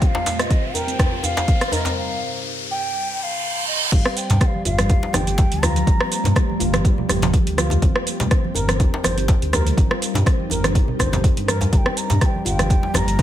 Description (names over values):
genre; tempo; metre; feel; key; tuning
afro house; 123 BPM; 4/4; swing 54% on 16ths; G minor; A4 = 440 Hz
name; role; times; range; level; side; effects
breathy hollow bansuri; melody; 0.0-6.6, 11.7-13.2 s; Eb5 to Bb5; -27 LUFS; equal; digital delay
ethereal airy pad; sustained chords; 0.0-13.2 s; G2 to G4; -29 LUFS; equal; ensemble chorus, built-in reverb, phaser, sidechain pumping
handpan; arpeggios; 0.0-13.2 s; G3 to C5; -28 LUFS; left 1 dB; sidechain pumping, digital delay
afro-pop drum kit; drums; 0.0-13.2 s; crash cymbal, hi-hat, rim click, shaker; -24 LUFS; right 1 dB; small room ambience
electronic kick drum; drums; 0.0-13.2 s; none; -18 LUFS; equal; small room ambience
riser and reverse cymbal; sound effects; 0.0-3.9 s; none; -26 LUFS; right 1 dB; none
djembe; percussion; 0.1-13.2 s; none; -27 LUFS; left 2 dB; none
dark detuned saw bass; bass; 3.9-13.2 s; G1 to G2; -22 LUFS; equal; tube saturation, sidechain pumping
congas; percussion; 3.9-13.2 s; none; -29 LUFS; right 3 dB; none
room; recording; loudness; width
studio reverb; none; -17 LUFS; side -12 dB against mid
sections
0.0-3.9 A section; 3.9-13.2 B section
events
build-up 0.0-3.9; riser 0.0-3.9; break 2.0-3.9; reverse cymbal 2.9-3.9; drop 3.9-13.2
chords
0.0 Cm/G; 3.9 Gm9; 7.8 Cm/G; 11.7 Gm9